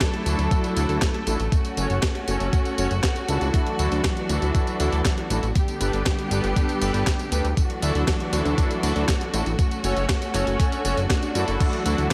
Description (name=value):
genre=italo disco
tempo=119 BPM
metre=4/4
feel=straight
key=D major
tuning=A4 = 440 Hz
part: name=clear studio string section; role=sustained chords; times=0.0-12.1 s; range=D3 to A4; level=-30 LUFS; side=equal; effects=none
part: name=clean 12-bit digital drum machine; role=drums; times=0.0-12.1 s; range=crash cymbal, handclaps, hi-hat, snare drum, tambourine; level=-32 LUFS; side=equal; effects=studio reverb, gated reverb
part: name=electronic kick drum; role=drums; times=0.0-12.1 s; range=none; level=-25 LUFS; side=equal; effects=studio reverb
part: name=analog synth brass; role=stabs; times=0.3-12.1 s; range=C#4 to C#5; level=-31 LUFS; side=equal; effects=chorus, cassette tape, delay
part: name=fat analog bass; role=bass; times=0.3-12.1 s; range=F#1 to F#2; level=-27 LUFS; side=equal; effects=none
part: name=swell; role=sound effects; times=10.8-11.6 s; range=none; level=-37 LUFS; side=equal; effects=none
room=light reverb, digital ambience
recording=none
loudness=-23 LUFS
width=mono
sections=0.0-12.1 A section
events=none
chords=0.0 Dadd9; 1.5 F#m; 3.5 Dadd9; 5.6 Gadd9; 7.6 Dadd9; 9.6 F#m; 11.6 Dadd9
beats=0.01 0.51 1.02 | 1.52 2.03 2.53 3.04 | 3.54 4.04 4.55 5.05 | 5.56 6.06 6.56 7.07 | 7.57 8.08 8.58 9.09 | 9.59 10.09 10.60 11.10 | 11.61 12.11